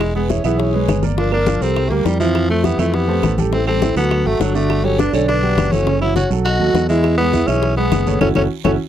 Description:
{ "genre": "Afro-Cuban jazz", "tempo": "205 BPM", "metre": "4/4", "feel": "straight", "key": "unclear", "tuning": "A4 = 439 Hz", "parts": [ { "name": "growling tenor saxophone", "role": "melody", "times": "0.0-8.7 s", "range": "F3 to F#4", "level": "-21 LUFS", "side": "equal", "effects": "none" }, { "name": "mellow hollow jazz flute", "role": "second line", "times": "0.0-8.7 s", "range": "C4 to D#5", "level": "-24 LUFS", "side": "left 12 dB", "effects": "none" }, { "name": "fingered electric bass", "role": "bass", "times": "0.0-8.8 s", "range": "E1 to F2", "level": "-19 LUFS", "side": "equal", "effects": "none" }, { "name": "bongos", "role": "percussion", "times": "0.0-8.7 s", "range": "none", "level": "-24 LUFS", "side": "left 9 dB", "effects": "none" }, { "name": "claves", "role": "percussion", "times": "0.0-8.7 s", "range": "none", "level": "-31 LUFS", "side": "right 24 dB", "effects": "none" }, { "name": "congas", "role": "percussion", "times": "0.0-8.7 s", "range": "none", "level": "-24 LUFS", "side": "left 3 dB", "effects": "none" }, { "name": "guiro", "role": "percussion", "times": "0.0-8.7 s", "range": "none", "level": "-37 LUFS", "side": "right 22 dB", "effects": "none" }, { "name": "warm grand piano", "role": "accompaniment", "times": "0.1-8.7 s", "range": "C#3 to F5", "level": "-20 LUFS", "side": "right 6 dB", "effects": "none" } ], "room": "little or no reverb", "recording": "dry, close 1970s-style studio recording", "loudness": "-14 LUFS", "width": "side -10 dB against mid", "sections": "0.0-8.9 A section", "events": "band accent 8.2-8.9; drum fill 8.7", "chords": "0.0 E6; 1.2 Gm7; 1.8 C9; 2.4 Fmaj9; 3.5 Am7; 4.1 D; 4.7 Gmaj7; 5.9 F#m7; 6.5 B7; 7.0 E69; 8.2 F#m7", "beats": "| 0.00 0.29 0.59 0.88 | 1.18 1.47 1.76 2.06 | 2.35 2.64 2.94 3.23 | 3.52 3.82 4.11 4.40 | 4.70 4.99 5.28 5.58 | 5.87 6.16 6.46 6.75 | 7.04 7.33 7.63 7.92 | 8.21 8.51" }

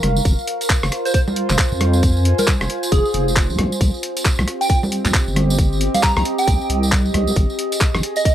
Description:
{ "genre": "UK garage, two-step garage", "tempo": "135 BPM", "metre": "4/4", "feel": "swing 61% on 16ths", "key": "unclear", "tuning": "A4 = 441 Hz", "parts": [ { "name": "deep soft wobble bass", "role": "bass", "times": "0.0-8.0 s", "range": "F1 to F2", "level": "-18 LUFS", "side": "equal", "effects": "chorus, sidechain pumping" }, { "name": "breakbeat sampler-style drum kit", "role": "drums", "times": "0.0-8.3 s", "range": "congas, handclaps, hi-hat, rim click", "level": "-22 LUFS", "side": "equal", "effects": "none" }, { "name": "warbly tape-like pad", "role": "texture", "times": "0.0-8.3 s", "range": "C4 to Cb6", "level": "-24 LUFS", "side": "right 1 dB", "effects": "chorus, built-in reverb, sidechain pumping" }, { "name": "tambourine", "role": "percussion", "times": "0.2-8.3 s", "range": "none", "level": "-29 LUFS", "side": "right 2 dB", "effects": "none" }, { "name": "electronic kick drum", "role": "drums", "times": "0.3-8.3 s", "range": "none", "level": "-17 LUFS", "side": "equal", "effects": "none" }, { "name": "plucky unison lead", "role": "melody", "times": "1.1-8.3 s", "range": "Ab4 to Bb5", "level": "-22 LUFS", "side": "right 2 dB", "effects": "dub echo" } ], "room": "light reverb", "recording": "vinyl crackle", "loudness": "-15 LUFS", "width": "side -11 dB against mid", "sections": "0.0-8.3 A section", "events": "none", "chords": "0.0 Fm; 3.6 Cm; 7.4 Abm", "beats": "| 0.25 0.70 1.14 1.59 | 2.03 2.48 2.92 3.36 | 3.81 4.25 4.70 5.14 | 5.59 6.03 6.47 6.92 | 7.36 7.81 8.25" }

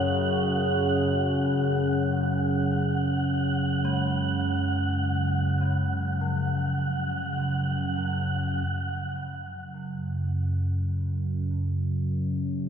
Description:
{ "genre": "dark ambient drone", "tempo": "free time", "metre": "none", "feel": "none", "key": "unclear", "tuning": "A4 = 440 Hz", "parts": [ { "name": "analog drone", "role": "drone", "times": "0.0-12.7 s", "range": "F#2 to C#3", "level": "-25 LUFS", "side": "equal", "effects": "chorus" }, { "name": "wind-like tuned noise texture", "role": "texture", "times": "0.0-8.7 s", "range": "F#5", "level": "-31 LUFS", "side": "right 2 dB", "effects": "built-in reverb" }, { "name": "gamelan-type bronze metallophone", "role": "arpeggios", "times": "3.8-12.7 s", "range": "E#3 to G#3", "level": "-40 LUFS", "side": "left 3 dB", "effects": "tape echo" } ], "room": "moderate spring reverb, RT60 2.4 s", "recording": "echo-heavy mix, nothing above 10.5 kHz", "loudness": "-24 LUFS", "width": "side -8 dB against mid", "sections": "0.0-8.7 A section; 8.7-12.7 B section", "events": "fade-out on bronze metallophone 0.0-8.7", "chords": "0.0 F#sus2; 8.7 F#5", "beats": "free time" }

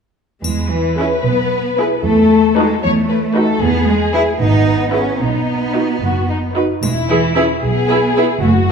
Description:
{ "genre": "cinematic, playful, whimsical film cue", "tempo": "75 BPM (dotted quarters)", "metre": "6/8", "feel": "straight", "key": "E major", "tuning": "A4 = 440 Hz", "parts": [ { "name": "warm studio violin section", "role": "second line", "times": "0.4-8.7 s", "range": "B3 to C#5", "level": "-19 LUFS", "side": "left 3 dB", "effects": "none" }, { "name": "rich studio cello section", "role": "bass", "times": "0.4-8.7 s", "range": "E3 to E4", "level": "-17 LUFS", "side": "equal", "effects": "none" }, { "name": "warm studio double bass section", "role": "bass", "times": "0.4-8.7 s", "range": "E1 to E2", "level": "-20 LUFS", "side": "right 3 dB", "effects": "none" }, { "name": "triangle", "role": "percussion", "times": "0.4-1.5, 6.8-7.9 s", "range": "none", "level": "-29 LUFS", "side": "left 5 dB", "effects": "none" }, { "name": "rich studio violin section", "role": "melody", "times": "1.0-8.7 s", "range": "B4", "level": "-25 LUFS", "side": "left 8 dB", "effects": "none" }, { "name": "clear studio viola section", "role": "accompaniment", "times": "1.0-8.7 s", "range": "D#4 to G#4", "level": "-20 LUFS", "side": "right 2 dB", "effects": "none" } ], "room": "moderate concert hall reverb, RT60 1.9 s", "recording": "minimal, uncompressed stereo recording", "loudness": "-13 LUFS", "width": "side -6 dB against mid", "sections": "0.4-8.7 A section", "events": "none", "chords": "0.4 E; 2.0 B7/E; 3.6 E; 4.4 E/G#; 5.2 B; 6.8 E", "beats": "| 0.44 1.25 | 2.04 2.83 | 3.61 4.40 | 5.21 6.02 | 6.83 7.63 | 8.43" }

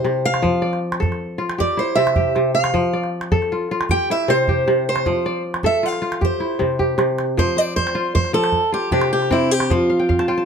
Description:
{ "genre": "west african traditional, West African string and xylophone music", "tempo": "104 BPM (dotted quarters)", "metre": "12/8", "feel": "straight", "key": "F major", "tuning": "A4 = 441 Hz", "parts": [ { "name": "picked old ladder-braced acoustic guitar", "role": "melody", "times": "0.0-10.4 s", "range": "E4 to G5", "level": "-20 LUFS", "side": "right 2 dB", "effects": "none" }, { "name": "kora", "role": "arpeggios", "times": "0.0-10.5 s", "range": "C3 to A5", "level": "-20 LUFS", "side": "left 1 dB", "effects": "none" }, { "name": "calabash", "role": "percussion", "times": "0.1-10.3 s", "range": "none", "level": "-23 LUFS", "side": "right 2 dB", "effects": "none" } ], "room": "light reverb", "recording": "none", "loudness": "-17 LUFS", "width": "side -6 dB against mid", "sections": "0.0-7.4 A section; 7.4-10.5 B section", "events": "steel-string acoustic guitar solo 0.0-7.4; drum fill 6.6-7.4; kora fill 9.9-10.5", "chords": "0.4 F; 1.6 C; 2.7 F; 3.9 C; 5.1 F; 6.2 C; 7.4 F5; 8.5 Csus2; 9.7 F5", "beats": "| 0.43 1.01 1.59 2.17 | 2.74 3.32 3.90 4.48 | 5.06 5.64 6.22 6.80 | 7.38 7.96 8.54 9.12 | 9.71 10.29" }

